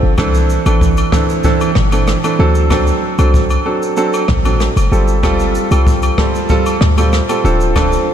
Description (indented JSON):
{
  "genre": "afrobeats",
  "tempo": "95 BPM",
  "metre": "4/4",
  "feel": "straight",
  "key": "C major",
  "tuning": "A4 = 440 Hz",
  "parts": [
    { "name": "warm concert grand piano", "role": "accompaniment", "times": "0.0-8.1 s", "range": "E3 to A4", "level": "-15 LUFS", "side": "right 2 dB", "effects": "none" },
    { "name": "warm 808-style bass", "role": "bass", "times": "0.0-8.0 s", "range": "D1 to D2", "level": "-14 LUFS", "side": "left 1 dB", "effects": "none" },
    { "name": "jazz brush drum kit", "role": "drums", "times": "0.2-8.1 s", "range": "kick drum, rim click, shaker, toms", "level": "-17 LUFS", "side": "equal", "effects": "none" },
    { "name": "agogo bells", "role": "percussion", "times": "0.2-7.9 s", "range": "none", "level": "-24 LUFS", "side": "left 1 dB", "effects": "none" }
  ],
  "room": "moderate lush hall reverb, RT60 2.7 s",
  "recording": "dreamy mix soaked in reverb",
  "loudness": "-11 LUFS",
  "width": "side -9 dB against mid",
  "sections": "0.0-8.1 A section",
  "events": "break 0.0",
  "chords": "0.2 C69; 2.4 D7; 4.9 G9sus4; 7.4 Dm7"
}